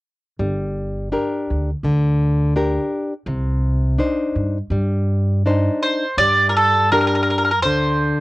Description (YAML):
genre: italian folk, Italian serenade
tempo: 83 BPM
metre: 4/4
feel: rubato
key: G minor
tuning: A4 = 440 Hz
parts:
  - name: nylon-string guitar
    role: accompaniment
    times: 0.4-8.2 s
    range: C3 to C5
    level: -21 LUFS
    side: left 1 dB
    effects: cassette tape
  - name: upright bass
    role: bass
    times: 0.4-8.1 s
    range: G1 to G2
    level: -21 LUFS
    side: equal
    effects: none
  - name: bowl-back mandolin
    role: melody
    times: 5.8-8.2 s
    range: A4 to D5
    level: -16 LUFS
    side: right 1 dB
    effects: cassette tape
room: light reverb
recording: home recording on cassette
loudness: -16 LUFS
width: side -19 dB against mid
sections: 0.4-6.2 A section; 6.2-8.2 B section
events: none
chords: 0.4 Gm; 3.3 Cmadd9; 6.2 Gm